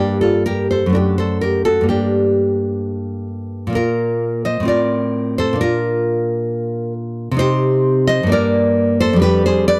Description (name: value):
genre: romantic piece for solo classical guitar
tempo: 65 BPM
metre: 2/4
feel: rubato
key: G minor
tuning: A4 = 441 Hz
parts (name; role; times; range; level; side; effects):
- nylon-string guitar; solo; 0.0-9.8 s; F2 to Eb5; -17 LUFS; equal; none
room: light reverb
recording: close, detailed microphones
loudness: -17 LUFS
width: mono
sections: 0.0-9.8 A section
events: none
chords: 0.0 Gm; 0.9 D/F#; 1.9 Gm; 3.8 Bb5; 4.7 F/A; 5.6 Bb; 7.4 Cm; 8.3 Gm; 9.2 G7/F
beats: 0.94 | 1.89 2.84 | 3.78 4.70 | 5.62 6.51 | 7.42 8.34 | 9.25